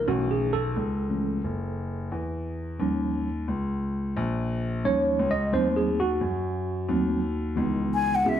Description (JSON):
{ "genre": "hip hop, jazz-hop", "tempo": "88 BPM", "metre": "4/4", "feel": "swing 58% on 16ths", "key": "unclear", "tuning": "A4 = 439 Hz", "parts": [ { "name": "mellow tine electric piano", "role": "accompaniment", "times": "0.0-8.4 s", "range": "E3 to D#5", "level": "-26 LUFS", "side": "right 2 dB", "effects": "medium stereo tremolo" }, { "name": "dark baby grand piano", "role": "bass", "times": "0.0-8.4 s", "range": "F#1 to F#2", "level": "-28 LUFS", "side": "left 1 dB", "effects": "none" }, { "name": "breathy concert flute", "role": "melody", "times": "7.9-8.4 s", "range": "E5 to G#5", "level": "-23 LUFS", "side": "left 3 dB", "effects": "none" } ], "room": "moderate stone room reverb, RT60 1.4 s", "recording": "band playing live in one room", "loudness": "-24 LUFS", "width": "side -10 dB against mid", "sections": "0.0-8.3 A section", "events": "tine electric piano solo 0.0-8.3", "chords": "0.1 B9sus4; 2.8 D#7; 5.5 D#dim7; 7.6 C#m9" }